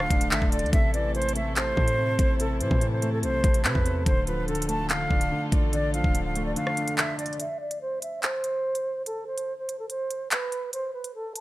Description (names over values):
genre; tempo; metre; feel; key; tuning
hip hop, drill; 144 BPM; 4/4; half-time; unclear; A4 = 443 Hz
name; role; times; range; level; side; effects
mellow silver concert flute; melody; 0.0-11.4 s; A4 to A5; -29 LUFS; right 1 dB; low-pass filter
warm concert grand piano; accompaniment; 0.0-7.4 s; C3 to D5; -31 LUFS; equal; low-pass filter
dark studio string section; sustained chords; 0.0-7.4 s; C3 to A4; -36 LUFS; left 2 dB; none
hard-hitting 808-style bass; bass; 0.0-6.5 s; D1 to C3; -29 LUFS; equal; none
drill drum kit; drums; 0.0-11.4 s; handclaps, hi-hat, kick drum, rim click; -25 LUFS; equal; none
room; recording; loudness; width
light reverb, studio reverb; none; -24 LUFS; side -17 dB against mid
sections
0.0-7.4 A section; 7.4-11.4 B section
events
kick muted 6.6-7.4; break 7.4-11.4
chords
0.0 Dm; 0.7 Am; 4.1 Dm; 7.4 N.C.